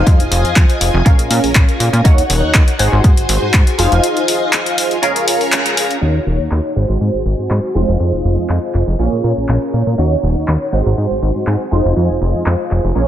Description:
filtered disco house; 121 BPM; 4/4; swing 53% on 16ths; A4 = 440 Hz
funky polysynth comp; accompaniment; 0.0-13.1 s; Ab3 to Gb5; -18 LUFS; right 1 dB; chorus, phaser, cassette tape, sidechain pumping, low-pass filter
string machine, full ensemble; sustained chords; 0.0-13.1 s; Db4 to Bb5; -22 LUFS; equal; ensemble chorus, sidechain pumping, low-pass filter
plucky analog bass; bass; 0.0-13.1 s; Eb1 to Bb2; -15 LUFS; equal; tube saturation, sidechain pumping, low-pass filter
electronic kick drum; drums; 0.1-3.6 s; -10 LUFS; equal; overdrive
punchy analog drum machine; drums; 0.1-12.8 s; handclaps, hi-hat; -18 LUFS; left 1 dB; overdrive, sidechain pumping on hats, low-pass filter on hats, low-pass filter on snare
light reverb; -12 LUFS; side -11 dB against mid
0.0-6.0 A section; 6.0-13.1 B section
filter sweep 0.0-6.0, 6.0-13.1; break 4.0-6.0; band accent 5.5
0.0 Fm7; 1.1 Bbm7; 2.1 Ebm7; 2.8 Ab7; 3.8 Fm7; 5.0 Bbm7; 6.0 Ebm7; 6.8 Ab7; 7.8 Fm7; 9.0 Bbm7; 10.0 Ebm7; 10.7 Ab7; 11.7 Fm7

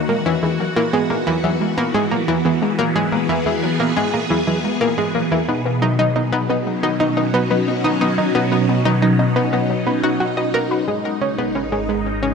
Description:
ambient, sequencer-driven space music; 89 BPM; 4/4; straight; A4 = 440 Hz
phased string machine; sustained chords; 0.0-12.3 s; B2 to A#4; -20 LUFS; equal; ensemble chorus, phaser
warbly dusty pluck; arpeggios; 0.1-10.8 s; F#3 to F#5; -25 LUFS; moving between left 2 dB and right 5 dB; chorus, auto-pan, ping-pong delay
analog pluck; riff; 0.1-12.3 s; E3 to D#5; -20 LUFS; left 1 dB; chorus, ping-pong delay, shimmer reverb
analog drone; bass; 11.5-12.3 s; G#1; -30 LUFS; equal; chorus
moderate plate reverb, RT60 2.7 s; -16 LUFS; side -5 dB against mid
0.0-10.9 A section; 10.9-12.3 B section
0.1 Eadd9; 5.5 B; 10.9 G#m

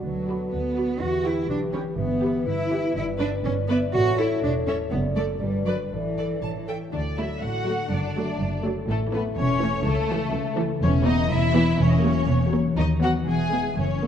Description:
cinematic, playful, whimsical film cue; 123 BPM; 2/4; straight; D major; A4 = 441 Hz
mellow French horn section; sustained chords; 0.0-6.7 s; F#4 to E5; -30 LUFS; left 3 dB
concert harp; arpeggios; 0.0-14.1 s; F#2 to D5; -29 LUFS; left 8 dB
warm studio cello section; bass; 0.0-14.1 s; C#2 to F#4; -27 LUFS; right 2 dB
warm studio double bass section; bass; 0.0-14.1 s; E1 to E2; -28 LUFS; right 3 dB
rich studio violin section; melody; 0.3-14.1 s; A4 to G#5; -32 LUFS; left 3 dB
rich studio violin section; second line; 0.3-14.1 s; A3 to A5; -31 LUFS; left 2 dB
rich studio viola section; accompaniment; 0.3-14.1 s; E3 to B4; -28 LUFS; right 1 dB
moderate scoring stage reverb, RT60 2.0 s; dark, warm production; -21 LUFS; side -9 dB against mid
0.0-6.9 A section; 6.9-14.1 B section
0.0 Bm/D; 1.0 Em; 2.0 Em/G; 3.0 Em7/G; 3.9 A; 4.9 D/F#; 5.4 G; 5.9 Asus4; 6.4 A; 6.9 D; 7.9 D/F#; 8.9 A; 9.8 A/C#; 10.8 C#m7/E; 11.8 F#7/E; 12.8 B/D#; 13.3 E

